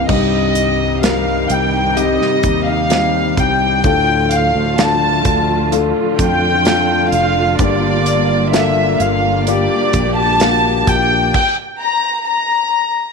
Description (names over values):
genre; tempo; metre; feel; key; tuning
pop ballad; 64 BPM; 4/4; straight; unclear; A4 = 442 Hz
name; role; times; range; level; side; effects
warm studio violin section; melody; 0.0-13.1 s; D5 to Bb5; -16 LUFS; left 1 dB; none
warm concert grand piano; accompaniment; 0.0-11.4 s; G2 to Bb4; -18 LUFS; left 10 dB; none
warm studio string section; sustained chords; 0.0-11.3 s; C3 to G4; -22 LUFS; right 12 dB; none
fingered electric bass; bass; 0.0-11.3 s; F1 to F2; -20 LUFS; right 1 dB; none
modern studio drum kit; drums; 0.1-11.6 s; crash cymbal, hi-hat, kick drum, snare drum; -20 LUFS; right 2 dB; none
room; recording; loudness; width
light reverb, small room ambience; 1960s-style stereo with parts hard left and right; -12 LUFS; side -4 dB against mid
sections
0.1-13.1 A section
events
stop 11.3-13.1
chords
0.1 Cm; 3.8 Dm; 7.6 Gm7; 11.3 N.C.